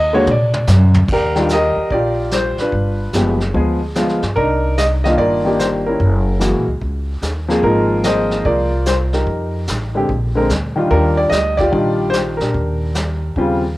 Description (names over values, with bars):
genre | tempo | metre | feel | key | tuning
jazz piano trio | 147 BPM | 4/4 | swing 66% on 8ths | Eb major | A4 = 440 Hz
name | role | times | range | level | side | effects
clear grand piano | melody | 0.0-13.7 s | Db3 to D#5 | -16 LUFS | equal | cassette tape
upright bass | bass | 0.0-13.8 s | Gb1 to A#2 | -18 LUFS | equal | none
vintage brush drum kit | drums | 0.3-13.8 s | brushed snare drum, crash cymbal, hi-hat, kick drum, snare drum, toms | -24 LUFS | equal | cassette tape
room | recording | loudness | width
light reverb, small room ambience | home recording on cassette | -14 LUFS | side -18 dB against mid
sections
0.0-1.1 A section; 1.1-13.8 B section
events
grand piano solo 0.0-1.1; drum fill 0.3-1.1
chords
0.3 A#aug; 1.1 Ebmaj9; 2.7 G7b9; 4.4 Cm11; 6.0 Gb9; 7.6 Ab69; 9.3 F7sus2; 10.1 Bb; 10.9 Ebmaj9